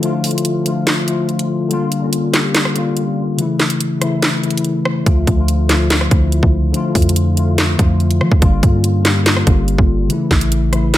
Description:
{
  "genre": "hip hop, trap",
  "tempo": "143 BPM",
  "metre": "4/4",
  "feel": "half-time",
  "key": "D harmonic minor",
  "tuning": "A4 = 440 Hz",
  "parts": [
    { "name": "Celtic harp", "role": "melody", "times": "0.0-1.3 s", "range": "none", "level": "barely audible", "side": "none", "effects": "none" },
    { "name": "mellow tine electric piano", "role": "accompaniment", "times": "0.0-11.0 s", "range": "C#3 to G4", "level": "-17 LUFS", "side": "left 3 dB", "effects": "ensemble chorus, low-pass filter" },
    { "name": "trap drum kit", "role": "drums", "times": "0.0-11.0 s", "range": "handclaps, hi-hat, kick drum, rim click, snare drum", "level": "-16 LUFS", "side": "equal", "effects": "overdrive" },
    { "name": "clean 808-style bass", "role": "bass", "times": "5.1-11.0 s", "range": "G1 to F3", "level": "-16 LUFS", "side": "right 1 dB", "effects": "none" }
  ],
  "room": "digital ambience",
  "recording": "none",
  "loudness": "-13 LUFS",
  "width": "side -14 dB against mid",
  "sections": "0.0-11.0 A section",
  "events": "break 0.0-5.1",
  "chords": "0.0 Dm; 1.7 Gm7; 3.4 A; 5.1 Dm; 8.4 Gm7; 10.1 A",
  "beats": "| 0.03 0.45 0.87 1.29 | 1.71 2.13 2.55 2.97 | 3.38 3.81 4.22 4.64 | 5.06 5.48 5.90 6.32 | 6.74 7.16 7.58 8.00 | 8.42 8.84 9.26 9.68 | 10.10 10.52 10.94"
}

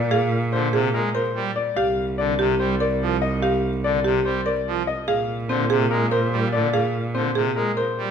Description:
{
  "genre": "classical, minimalist pattern music",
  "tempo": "145 BPM",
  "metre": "4/4",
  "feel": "straight",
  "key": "unclear",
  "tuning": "A4 = 439 Hz",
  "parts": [
    { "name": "bright grand piano", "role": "melody", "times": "0.0-8.0 s", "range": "Bb4 to F5", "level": "-26 LUFS", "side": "left 6 dB", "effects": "none" },
    { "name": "rich cello", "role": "bass", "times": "0.0-8.1 s", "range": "C2 to Bb2", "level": "-25 LUFS", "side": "right 2 dB", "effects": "none" },
    { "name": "buzzing marimba with medium hard mallets", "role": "arpeggios", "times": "0.1-8.0 s", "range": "C4 to Bb4", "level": "-25 LUFS", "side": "right 3 dB", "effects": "none" },
    { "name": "pipe organ, trumpet", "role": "accompaniment", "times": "0.5-8.1 s", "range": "C3 to Ab3", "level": "-27 LUFS", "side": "left 1 dB", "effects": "none" }
  ],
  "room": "wet large studio reverb, RT60 1.3 s",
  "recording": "minimal, uncompressed stereo recording",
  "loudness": "-20 LUFS",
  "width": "side -7 dB against mid",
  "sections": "0.0-8.1 A section",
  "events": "none",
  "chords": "0.0 Bb9; 1.8 C7sus2; 5.1 Bb9",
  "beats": "| 0.11 0.53 0.94 1.35 | 1.77 2.18 2.60 3.01 | 3.42 3.84 4.25 4.67 | 5.08 5.49 5.91 6.32 | 6.73 7.15 7.56 7.98"
}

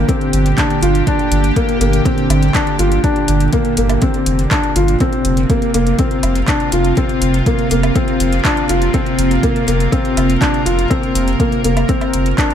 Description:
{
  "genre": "piano and strings electronica",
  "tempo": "122 BPM",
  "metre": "4/4",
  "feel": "straight",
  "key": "unclear",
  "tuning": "A4 = 440 Hz",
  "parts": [
    { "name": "lush unison pad", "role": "sustained chords", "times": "0.0-12.5 s", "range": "Bb2 to Bb5", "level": "-19 LUFS", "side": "right 2 dB", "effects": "chorus, sidechain pumping, shimmer reverb" },
    { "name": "felt-muted upright piano", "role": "riff", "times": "0.0-12.5 s", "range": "Bb3 to F4", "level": "-17 LUFS", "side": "left 2 dB", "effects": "tape echo, shimmer reverb" },
    { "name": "warm sub bass", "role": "bass", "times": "0.0-12.3 s", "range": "F1 to G1", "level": "-16 LUFS", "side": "equal", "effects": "sidechain pumping" },
    { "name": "deep house drum kit", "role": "drums", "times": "0.1-12.5 s", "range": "handclaps, hi-hat, woodblock", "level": "-23 LUFS", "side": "equal", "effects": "overdrive, small room ambience" },
    { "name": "electronic kick drum", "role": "drums", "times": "0.1-12.5 s", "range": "none", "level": "-19 LUFS", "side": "equal", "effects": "overdrive, small room ambience" }
  ],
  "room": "light reverb, digital ambience",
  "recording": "none",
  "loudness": "-12 LUFS",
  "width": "side -9 dB against mid",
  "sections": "0.0-12.5 A section",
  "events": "none",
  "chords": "0.0 Fsus4",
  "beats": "0.09 0.58 | 1.07 1.56 2.06 2.55 | 3.04 3.53 4.02 4.51 | 5.01 5.50 5.99 6.48 | 6.97 7.46 7.96 8.45 | 8.94 9.43 9.92 10.41 | 10.91 11.40 11.89 12.38"
}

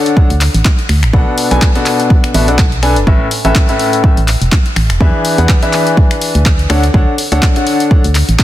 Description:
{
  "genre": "piano house",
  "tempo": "124 BPM",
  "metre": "4/4",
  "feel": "swing 56% on 16ths",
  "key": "A major",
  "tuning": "A4 = 439 Hz",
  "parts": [
    { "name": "clear concert grand piano", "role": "riff", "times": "0.0-8.0 s", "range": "A2 to G#5", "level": "-14 LUFS", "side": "left 2 dB", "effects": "sidechain pumping, tape echo" },
    { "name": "punchy analog drum machine", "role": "drums", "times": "0.1-8.4 s", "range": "finger snaps, handclaps, hi-hat", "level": "-18 LUFS", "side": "left 1 dB", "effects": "overdrive, studio ambience" },
    { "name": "electronic kick drum", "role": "drums", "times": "0.2-8.4 s", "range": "none", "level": "-10 LUFS", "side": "equal", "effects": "overdrive, studio ambience" },
    { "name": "organ-like FM bass", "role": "bass", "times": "0.3-8.4 s", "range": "E1 to E2", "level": "-12 LUFS", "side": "equal", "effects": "sidechain pumping" }
  ],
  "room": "little or no reverb",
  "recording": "dense, heavily limited modern master",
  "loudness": "-9 LUFS",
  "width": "side -14 dB against mid",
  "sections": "0.0-8.4 A section",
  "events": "none",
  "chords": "0.0 Dmaj7; 1.1 Bm7; 3.1 Aadd9; 5.0 E7; 6.7 Dmaj7",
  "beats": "0.17 0.65 | 1.14 1.62 2.10 2.59 | 3.07 3.55 4.04 4.52 | 5.01 5.49 5.97 6.46 | 6.94 7.42 7.91 8.39"
}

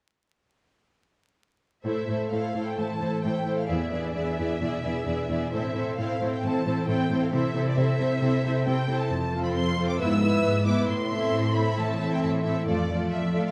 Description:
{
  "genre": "classical",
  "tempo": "134 BPM",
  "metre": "4/4",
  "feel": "rubato",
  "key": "A minor",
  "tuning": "A4 = 439 Hz",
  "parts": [
    { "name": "clear symphonic violin section", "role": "melody", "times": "1.8-13.5 s", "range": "D5 to E6", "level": "-36 LUFS", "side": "equal", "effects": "none" },
    { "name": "rich symphonic violin section", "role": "second line", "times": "1.8-13.5 s", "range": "G#4 to E5", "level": "-33 LUFS", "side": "equal", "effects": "none" },
    { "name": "rich symphonic viola section", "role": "accompaniment", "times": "1.8-13.5 s", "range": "A3 to F4", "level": "-32 LUFS", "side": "equal", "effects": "none" },
    { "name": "concert harp", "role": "arpeggios", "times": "1.8-13.5 s", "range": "E2 to C5", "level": "-33 LUFS", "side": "equal", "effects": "none" },
    { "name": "rich symphonic cello section", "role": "bass", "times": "1.8-13.5 s", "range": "E2 to C3", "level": "-32 LUFS", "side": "equal", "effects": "none" }
  ],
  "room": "moderate scoring stage reverb, RT60 1.7 s",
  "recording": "dark, warm production, vinyl crackle",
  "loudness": "-26 LUFS",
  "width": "mono",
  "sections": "1.8-13.5 A section",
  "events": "none",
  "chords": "1.8 Am; 3.7 E7; 5.5 Am; 7.3 Am/C; 9.1 F; 10.0 E/G#; 10.9 Am; 12.7 Dm/F",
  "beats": "| 1.85 2.31 2.77 3.23 | 3.69 4.15 4.61 5.06 | 5.52 5.97 6.42 6.87 | 7.32 7.76 8.21 8.65 | 9.10 9.54 9.99 10.44 | 10.88 11.33 11.78 12.23 | 12.68 13.12"
}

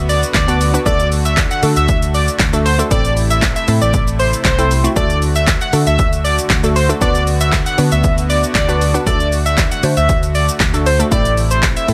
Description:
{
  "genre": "dance-pop",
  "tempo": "117 BPM",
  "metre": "4/4",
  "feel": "straight",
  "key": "unclear",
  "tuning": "A4 = 440 Hz",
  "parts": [
    { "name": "glassy wavetable pluck", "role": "accompaniment", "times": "0.0-11.9 s", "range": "A3 to C5", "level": "-22 LUFS", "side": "equal", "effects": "chorus" },
    { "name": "soft supersaw", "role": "sustained chords", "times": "0.0-11.9 s", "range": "C3 to F#4", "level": "-27 LUFS", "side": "equal", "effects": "sidechain pumping" },
    { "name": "vintage muted fingered electric bass", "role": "bass", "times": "0.0-11.9 s", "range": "A1 to D3", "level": "-19 LUFS", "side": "equal", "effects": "sidechain pumping" },
    { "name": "downlifter", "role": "sound effects", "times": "0.0-0.9 s", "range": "none", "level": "barely audible", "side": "none", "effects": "none" },
    { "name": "octave-doubled lead", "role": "melody", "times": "0.1-11.9 s", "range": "C5 to F#5", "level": "-20 LUFS", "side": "equal", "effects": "chorus, digital delay" },
    { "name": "punchy analog drum machine", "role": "drums", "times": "0.1-11.9 s", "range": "handclaps, hi-hat, kick drum, shaker, snare drum", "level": "-20 LUFS", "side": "equal", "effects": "none" }
  ],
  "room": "light reverb, digital ambience",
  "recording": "none",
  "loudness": "-14 LUFS",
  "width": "mono",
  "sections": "0.0-11.9 A section",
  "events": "none",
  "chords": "0.0 Bm/D; 0.9 D; 2.9 Am; 5.0 D; 7.0 Bm/D; 9.1 D; 11.1 Am",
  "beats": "0.35 | 0.86 1.37 1.89 2.40 | 2.91 3.42 3.94 4.45 | 4.96 5.48 5.99 6.50 | 7.01 7.53 8.04 8.55 | 9.07 9.58 10.09 10.60 | 11.12 11.63"
}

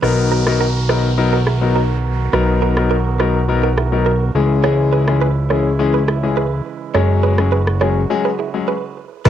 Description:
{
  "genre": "afrobeats",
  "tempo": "104 BPM",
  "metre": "4/4",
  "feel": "straight",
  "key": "B major",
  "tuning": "A4 = 440 Hz",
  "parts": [
    { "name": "clear concert grand piano", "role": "accompaniment", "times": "0.0-9.3 s", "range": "E3 to A#4", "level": "-18 LUFS", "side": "left 8 dB", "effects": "cassette tape" },
    { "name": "mellow brass ensemble", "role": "sustained chords", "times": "0.0-9.3 s", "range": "C#3 to A#4", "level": "-27 LUFS", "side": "right 9 dB", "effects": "cassette tape" },
    { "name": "direct-recorded clean electric guitar", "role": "riff", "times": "0.0-9.3 s", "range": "E4 to C#5", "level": "-23 LUFS", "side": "right 11 dB", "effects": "spring reverb, cassette tape, analog delay" },
    { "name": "fat analog bass", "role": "bass", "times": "0.0-9.3 s", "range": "F#1 to C#2", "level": "-17 LUFS", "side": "equal", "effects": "none" },
    { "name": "afro-pop drum kit", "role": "drums", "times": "0.0-9.3 s", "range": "crash cymbal, kick drum, rim click, shaker", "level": "-19 LUFS", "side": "equal", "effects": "cassette tape" },
    { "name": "downlifter", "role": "sound effects", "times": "0.0-4.6 s", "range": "none", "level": "-31 LUFS", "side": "right 1 dB", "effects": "none" }
  ],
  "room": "light reverb",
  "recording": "home recording on cassette",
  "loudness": "-14 LUFS",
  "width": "side -10 dB against mid",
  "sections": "0.0-9.3 A section",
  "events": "break 8.1-9.3",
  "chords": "0.0 Bmaj7; 4.4 C#m; 6.9 F#sus2",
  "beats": "| 0.02 0.60 1.18 1.75 | 2.33 2.91 3.48 4.06 | 4.64 5.22 5.79 6.37 | 6.95 7.52 8.10 8.68 | 9.25"
}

